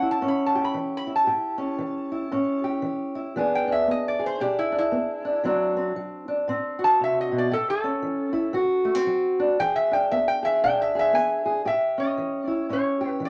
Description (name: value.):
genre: acoustic country blues, solo or duo.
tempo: 116 BPM.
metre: 4/4.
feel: swing 61% on 8ths.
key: A mixolydian.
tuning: A4 = 439 Hz.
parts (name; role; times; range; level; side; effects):
metal-body resonator slide guitar; melody; 0.0-13.3 s; E4 to B5; -26 LUFS; equal; none.
fingerpicked steel-string acoustic guitar; accompaniment; 0.0-13.3 s; A2 to G#4; -27 LUFS; equal; none.
room: moderate studio ambience, RT60 0.5 s.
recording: none.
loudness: -24 LUFS.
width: mono.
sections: 0.0-11.7 A section; 11.7-13.3 B section.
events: resonator guitar played with a steel bar solo 0.0-11.7.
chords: 0.0 A7; 3.4 E7; 5.4 D7; 7.5 A7; 8.6 D7; 9.6 E7; 11.7 A7.